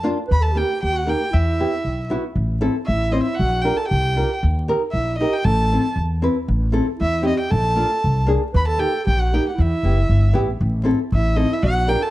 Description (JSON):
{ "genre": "klezmer", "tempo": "116 BPM", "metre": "2/4", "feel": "straight", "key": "A dorian sharp4", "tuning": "A4 = 439 Hz", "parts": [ { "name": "warm violin", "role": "melody", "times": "0.0-12.1 s", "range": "D#5 to B5", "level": "-24 LUFS", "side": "equal", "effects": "none" }, { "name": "nylon-string guitar", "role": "accompaniment", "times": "0.0-12.0 s", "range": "Bb3 to C5", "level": "-22 LUFS", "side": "left 1 dB", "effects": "none" }, { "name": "upright bass", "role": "bass", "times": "0.0-11.9 s", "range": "F#1 to E2", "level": "-19 LUFS", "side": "equal", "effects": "none" }, { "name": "dark clarinet", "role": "second line", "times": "0.3-12.1 s", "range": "D#4 to B4", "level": "-27 LUFS", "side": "right 4 dB", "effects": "none" } ], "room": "light reverb, small room reverb", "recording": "dark, warm production, vinyl crackle", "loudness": "-17 LUFS", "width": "side -16 dB against mid", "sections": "0.0-6.5 A section; 6.5-12.1 A section", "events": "none", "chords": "0.3 D#; 1.3 E5; 2.4 Am; 3.4 Bb; 4.4 D#; 5.4 Am; 7.5 Bb7; 8.5 D#; 9.6 Em; 10.6 Am", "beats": "| 0.30 0.81 | 1.33 1.84 | 2.36 2.87 | 3.38 3.90 | 4.42 4.93 | 5.45 5.96 | 6.48 6.99 | 7.51 8.02 | 8.54 9.05 | 9.57 10.08 | 10.60 11.12 | 11.63" }